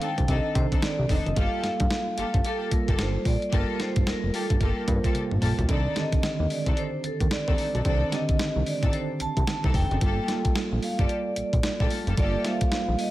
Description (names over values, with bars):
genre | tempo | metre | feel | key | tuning
R&B, new jack swing | 111 BPM | 4/4 | swing 62% on 16ths | C dorian | A4 = 440 Hz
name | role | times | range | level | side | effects
vibraphone with hard mallets | melody | 0.0-13.1 s | A4 to A5 | -31 LUFS | left 1 dB | none
mellow tine electric piano | accompaniment | 0.0-13.1 s | D3 to C5 | -30 LUFS | right 4 dB | medium stereo tremolo
warm studio string section | stabs | 0.0-12.4 s | Bb3 to A4 | -34 LUFS | left 4 dB | none
clean 12-bit digital drum machine | drums | 0.0-13.1 s | hi-hat, kick drum, snare drum, toms | -26 LUFS | equal | gated reverb
fat analog bass | bass | 0.2-13.0 s | F1 to C3 | -27 LUFS | equal | none
room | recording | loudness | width
little or no reverb | none | -23 LUFS | side -16 dB against mid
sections
0.0-5.7 A section; 5.7-13.1 B section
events
drum fill 5.1-5.7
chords
0.0 Cm69; 1.4 Gm9; 5.7 Cm69; 10.0 Gm9